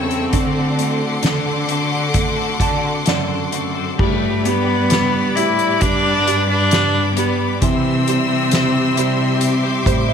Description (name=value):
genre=pop ballad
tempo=66 BPM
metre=4/4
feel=straight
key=G major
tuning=A4 = 440 Hz
part: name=warm cello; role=melody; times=0.0-10.1 s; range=A3 to E4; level=-19 LUFS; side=left 1 dB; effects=none
part: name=warm concert grand piano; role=accompaniment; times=0.0-10.1 s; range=C3 to A5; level=-24 LUFS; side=right 12 dB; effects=none
part: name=clear studio string section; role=sustained chords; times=0.0-10.1 s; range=G4 to E6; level=-23 LUFS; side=left 2 dB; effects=none
part: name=twelve-string electric guitar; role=arpeggios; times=0.0-10.1 s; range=C3 to C5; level=-27 LUFS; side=left 12 dB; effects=wide subtle chorus
part: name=dark symphonic cello section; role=bass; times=0.0-10.1 s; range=E2 to D3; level=-22 LUFS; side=left 1 dB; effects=none
part: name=soft-mallet drum kit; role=drums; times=0.1-10.1 s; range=crash cymbal, hi-hat, kick drum, snare drum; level=-21 LUFS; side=equal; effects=none
room=light reverb, studio reverb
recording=1960s-style stereo with parts hard left and right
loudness=-15 LUFS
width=side -7 dB against mid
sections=0.0-4.0 A section; 4.0-10.1 B section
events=grand piano fill 2.1-4.0, 9.4-10.1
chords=0.3 D7; 4.0 G; 7.6 C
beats=| 0.34 1.24 2.15 3.07 | 4.00 4.92 5.82 6.73 | 7.63 8.53 9.42